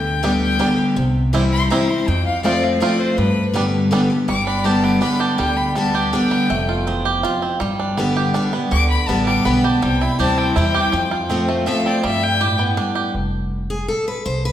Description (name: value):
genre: bluegrass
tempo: 163 BPM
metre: 3/4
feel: straight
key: G mixolydian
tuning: A4 = 440 Hz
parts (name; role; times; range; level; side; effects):
- clear fiddle; second line; 0.0-12.6 s; B4 to D6; -23 LUFS; left 3 dB; none
- picked steel-string acoustic guitar; accompaniment; 0.0-14.5 s; E2 to C5; -19 LUFS; left 1 dB; none
- upright bass; bass; 0.0-14.5 s; F1 to G2; -23 LUFS; equal; none
- bluegrass banjo; melody; 0.2-13.1 s; D3 to G4; -23 LUFS; right 4 dB; none
room: wet recital hall reverb, RT60 1.6 s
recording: recorded in a church or concert hall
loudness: -16 LUFS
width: side -11 dB against mid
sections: 0.0-4.3 A section; 4.3-13.1 A section; 13.1-14.5 A section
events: fiddle solo 0.0-13.1; steel-string acoustic guitar solo 13.1-14.5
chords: 0.0 G; 1.0 C; 2.1 F; 3.2 G; 6.5 F; 7.6 G; 9.8 C; 10.9 F; 12.0 G; 13.1 F5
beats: 0.23 0.60 | 0.97 1.34 1.71 | 2.07 2.44 2.81 | 3.18 3.55 3.92 | 4.29 4.66 5.03 | 5.39 5.76 6.13 | 6.50 6.87 7.24 | 7.61 7.98 8.35 | 8.71 9.08 9.45 | 9.82 10.19 10.56 | 10.93 11.30 11.67 | 12.04 12.41 12.78 | 13.15 13.52 13.89 | 14.26